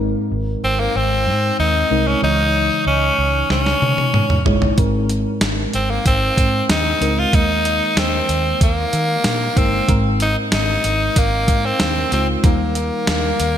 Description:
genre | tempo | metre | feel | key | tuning
1980s-style pop | 94 BPM | 4/4 | straight | Ab major | A4 = 445 Hz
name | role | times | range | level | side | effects
mellow FM electric piano | accompaniment | 0.0-13.6 s | Ab2 to Db5 | -23 LUFS | left 1 dB | chorus, phaser
vintage muted fingered electric bass | bass | 0.0-13.6 s | G1 to Eb3 | -22 LUFS | equal | none
raspy tenor saxophone | melody | 0.6-13.6 s | Bb3 to F4 | -18 LUFS | equal | digital delay
clean 12-bit digital drum machine | drums | 3.5-13.5 s | hi-hat, kick drum, snare drum, toms | -19 LUFS | equal | overdrive, gated reverb
room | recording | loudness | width
moderate lush hall reverb, RT60 2.7 s | bright 1980s-style digital production | -15 LUFS | side -10 dB against mid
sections
0.0-13.6 A section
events
drum fill 3.5-4.8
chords
0.0 Abadd9; 2.2 Dbmadd9; 4.8 Abadd9; 7.3 Ebsus4; 9.9 Abadd9; 12.4 Eb

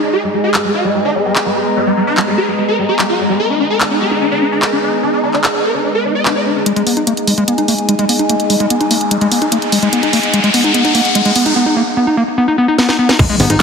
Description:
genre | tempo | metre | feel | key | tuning
psychedelic trance | 147 BPM | 4/4 | straight | G# minor | A4 = 439 Hz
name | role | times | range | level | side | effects
swarming rave lead | melody | 0.0-6.6 s | G#3 to D#5 | -16 LUFS | equal | chorus, phaser, sidechain pumping, ping-pong delay
evolving wavetable pad | sustained chords | 0.0-13.6 s | G#3 to D#4 | -20 LUFS | left 1 dB | phaser, built-in reverb, sidechain pumping
warbly tape-like pad | texture | 0.0-13.6 s | G#4 to A#5 | -21 LUFS | equal | chorus, built-in reverb, sidechain pumping
garage drum kit | drums | 0.5-13.6 s | crash cymbal, handclaps, hi-hat, snare drum | -18 LUFS | equal | none
overdriven acid bass | riff | 6.7-13.6 s | G#3 to D#4 | -14 LUFS | left 1 dB | distortion, auto-pan, cassette tape, sidechain pumping, ping-pong delay
riser and impact | sound effects | 8.4-13.6 s | none | -18 LUFS | left 1 dB | none
electronic kick drum | drums | 13.2-13.6 s | none | -11 LUFS | equal | none
plucky analog bass | bass | 13.4-13.6 s | G#1 | -13 LUFS | equal | none
room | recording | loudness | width
moderate lush hall reverb, RT60 2.0 s | heavily compressed radio sound, multiband compression | -11 LUFS | side -6 dB against mid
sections
0.0-6.7 A section; 6.7-13.2 B section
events
build-up 6.7-13.2; filter sweep on acid bass 6.7-13.2; filter sweep on ambient pad 6.7-13.2; riser 8.4-11.6; drum fill 12.8-13.2; impact 13.2-13.6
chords
0.0 G#5

